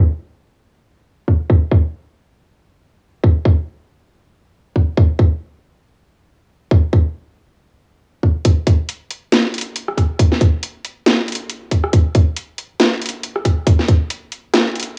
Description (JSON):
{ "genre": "dubstep", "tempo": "138 BPM", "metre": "4/4", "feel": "swing 57% on 16ths, half-time", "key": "none", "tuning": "none", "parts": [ { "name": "electronic kick drum", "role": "drums", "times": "1.3-14.0 s", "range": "none", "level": "-15 LUFS", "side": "equal", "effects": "small room reverb, cassette tape" }, { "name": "garage drum kit", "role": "drums", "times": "8.5-14.9 s", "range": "hi-hat, rim click, snare drum", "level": "-20 LUFS", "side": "equal", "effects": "high-pass filter on hats, small room reverb, cassette tape, high-pass filter on snare" } ], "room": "light reverb", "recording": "home recording on cassette, low-pass filter, small room ambience", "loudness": "-17 LUFS", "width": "mono", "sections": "0.0-8.5 A section; 8.5-15.0 B section", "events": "filter sweep 0.0-8.5; build-up 8.5-15.0", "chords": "none", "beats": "0.19 0.63 1.06 | 1.50 1.93 2.37 2.80 | 3.24 3.67 4.11 4.54 | 4.98 5.41 5.84 6.28 | 6.71 7.15 7.58 8.02 | 8.45 8.89 9.32 9.76 | 10.19 10.63 11.06 11.50 | 11.93 12.37 12.80 13.24 | 13.67 14.11 14.54" }